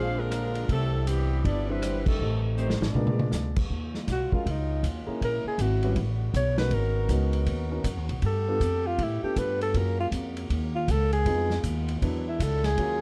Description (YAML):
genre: jazz, big band swing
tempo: 159 BPM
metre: 4/4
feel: swing 64% on 8ths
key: Eb minor from 3.7 s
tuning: A4 = 441 Hz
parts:
  - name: bright saxophone section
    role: melody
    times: 0.0-3.5 s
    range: E3 to F5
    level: -36 LUFS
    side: equal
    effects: none
  - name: mellow trombone section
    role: second line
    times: 0.0-3.5 s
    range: C3 to F4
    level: -38 LUFS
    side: equal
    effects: none
  - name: warm grand piano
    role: accompaniment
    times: 0.0-13.0 s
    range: F#3 to C5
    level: -36 LUFS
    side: equal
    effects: none
  - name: upright bass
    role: bass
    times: 0.0-13.0 s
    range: G1 to A2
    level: -30 LUFS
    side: equal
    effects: none
  - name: vintage drum kit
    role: drums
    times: 0.3-12.9 s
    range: crash cymbal, hi-hat, kick drum, ride cymbal, rim click, snare drum, toms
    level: -35 LUFS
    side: equal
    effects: none
  - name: brilliant trombone section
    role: sustained chords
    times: 3.7-13.0 s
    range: Db3 to Bb4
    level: -43 LUFS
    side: equal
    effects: none
  - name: warm alto saxophone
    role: melody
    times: 4.1-13.0 s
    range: Eb4 to C#5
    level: -31 LUFS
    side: equal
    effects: none
room: light reverb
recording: none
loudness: -27 LUFS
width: mono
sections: 0.0-3.7 A section; 3.7-13.0 B section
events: band accent 2.0; drum fill 2.6-3.3; alto saxophone solo 3.7-13.0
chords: 0.0 Bb9; 0.7 Cmaj7; 2.2 Am7b5; 2.9 Bb7b9; 3.7 Ebm11; 5.2 Bbm7b5; 6.0 A13; 6.7 Abm11; 8.2 G9; 9.7 Gbmaj9; 11.3 Fm7b5; 12.0 E9